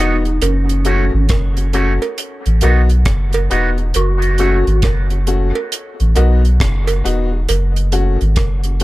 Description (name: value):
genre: dub reggae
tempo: 68 BPM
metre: 4/4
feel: swing 62% on 16ths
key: F# dorian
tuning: A4 = 439 Hz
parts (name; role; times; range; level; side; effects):
- percussive tonewheel organ; melody; 0.0-4.9 s; C#4 to F#4; -24 LUFS; equal; fast rotary speaker, dub echo
- electric guitar with an envelope filter; accompaniment; 0.0-4.6 s; A3 to F#4; -24 LUFS; right 3 dB; dub echo
- clear upright piano; stabs; 0.0-8.8 s; A3 to F#4; -23 LUFS; left 5 dB; dub echo
- soft dub sub bass; bass; 0.0-8.8 s; E1 to B1; -14 LUFS; equal; none
- deep reggae drum kit; drums; 0.3-8.8 s; hi-hat, kick drum, rim click; -19 LUFS; equal; none
- cowbell; percussion; 0.4-8.6 s; none; -25 LUFS; right 7 dB; dub echo
room: small room ambience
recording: none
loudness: -13 LUFS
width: side -18 dB against mid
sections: 0.0-8.8 A section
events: none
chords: 0.4 F#m; 2.2 B; 3.9 F#m; 5.7 B; 7.5 F#m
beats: | 0.41 1.30 2.18 3.06 | 3.95 4.83 5.72 6.60 | 7.48 8.37